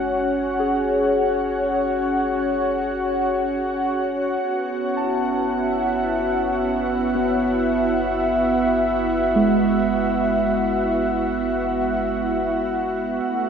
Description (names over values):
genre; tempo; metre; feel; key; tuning
ambient; 55 BPM; 4/4; straight; unclear; A4 = 443 Hz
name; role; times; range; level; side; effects
warm analog pad; sustained chords; 0.0-13.5 s; A3 to F#5; -20 LUFS; equal; chorus, shimmer reverb
muted felt-like synth keys; arpeggios; 0.0-13.3 s; G#3 to A5; -26 LUFS; right 2 dB; chorus, phaser, dub echo, shimmer reverb
warm sub bass; bass; 0.0-13.5 s; F#1; -38 LUFS; left 1 dB; none
room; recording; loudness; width
wet echo chamber reverb, RT60 2.1 s; echo-heavy mix, nothing above 11.0 kHz; -19 LUFS; side -7 dB against mid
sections
0.0-13.5 A section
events
fade-in on sub bass 0.0-13.5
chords
0.0 F#5; 4.4 Esus2/F#